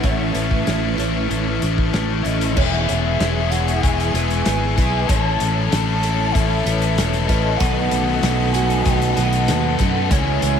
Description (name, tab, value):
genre	rock, shoegaze and dream pop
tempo	96 BPM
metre	4/4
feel	straight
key	E major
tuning	A4 = 441 Hz
part	pure sine lead	melody	0.0-10.6 s	D#5 to A5	-26 LUFS	right 2 dB	chorus, ping-pong delay
part	string machine, violins	sustained chords	0.0-10.6 s	G#4 to C#6	-30 LUFS	right 2 dB	ensemble chorus
part	picked twelve-string acoustic guitar	arpeggios	0.0-10.6 s	F#4 to C#5	-29 LUFS	right 6 dB	analog chorus, ping-pong delay
part	biting overdriven guitar	riff	0.0-10.6 s	A2 to A4	-22 LUFS	left 9 dB	analog chorus
part	crunchy overdriven guitar	riff	0.0-2.6, 7.6-10.6 s	A2 to E4	-26 LUFS	right 10 dB	reverse reverb
part	fingered electric bass	bass	0.0-10.6 s	E1 to F#2	-22 LUFS	equal	none
part	loose indie drum kit	drums	0.0-10.6 s	crash cymbal, hi-hat, kick drum, snare drum	-23 LUFS	equal	none
room	moderate plate reverb, RT60 2.6 s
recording	dreamy mix soaked in reverb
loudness	-16 LUFS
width	side -7 dB against mid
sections	0.0-2.6 A section; 2.6-10.6 B section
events	none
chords	0.0 Aadd9; 2.6 E6; 5.1 Aadd9; 7.6 B7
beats	| 0.04 0.68 1.31 1.94 | 2.58 3.21 3.84 4.47 | 5.09 5.72 6.35 6.98 | 7.61 8.23 8.86 9.49 | 10.11